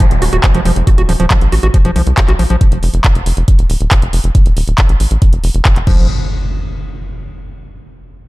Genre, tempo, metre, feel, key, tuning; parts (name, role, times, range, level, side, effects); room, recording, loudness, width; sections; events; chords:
psychedelic trance; 138 BPM; 4/4; straight; A4 = 440 Hz
overdriven acid bass; riff; 0.0-2.6, 5.9-6.1 s; F3 to Gb4; -19 LUFS; moving between left 4 dB and right 4 dB; auto-pan, sidechain pumping, tape echo
electronic kick drum; drums; 0.0-6.0 s; -10 LUFS; equal
garage drum kit; drums; 0.0-6.0 s; crash cymbal, handclaps, hi-hat; -20 LUFS; equal
downlifter and impact; sound effects; 0.0-2.6, 5.9-7.6 s; -22 LUFS; equal
tight sequencer bass; bass; 0.1-6.1 s; Eb1 to C2; -14 LUFS; equal
little or no reverb; dark, warm production; -10 LUFS; side -20 dB against mid
0.0-6.1 A section; 6.1-7.8 B section
filter sweep on analog synth bass 0.0-6.1
0.0 F5; 5.9 N.C.